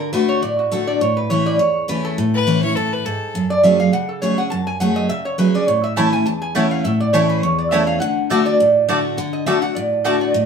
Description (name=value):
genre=bluegrass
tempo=206 BPM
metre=4/4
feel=swing 55% on 8ths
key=unclear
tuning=A4 = 440 Hz
part: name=lap resonator guitar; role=melody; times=0.0-10.5 s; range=F#4 to B5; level=-19 LUFS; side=right 2 dB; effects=none
part: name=picked steel-string acoustic guitar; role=accompaniment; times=0.0-10.5 s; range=E2 to G#4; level=-18 LUFS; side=left 1 dB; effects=none
part: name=clear fiddle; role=second line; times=2.3-3.4 s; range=A4 to C#5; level=-22 LUFS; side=left 5 dB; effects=none
part: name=mandolin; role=stabs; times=6.0-10.2 s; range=A3 to A5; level=-22 LUFS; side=right 2 dB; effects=none
room=wet studio reverb, RT60 0.7 s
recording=band playing live in one room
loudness=-15 LUFS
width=side -6 dB against mid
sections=0.0-10.5 A section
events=resonator guitar played with a steel bar solo 0.0-10.5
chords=0.0 D; 1.0 A; 3.3 F#madd9; 5.7 A; 8.0 D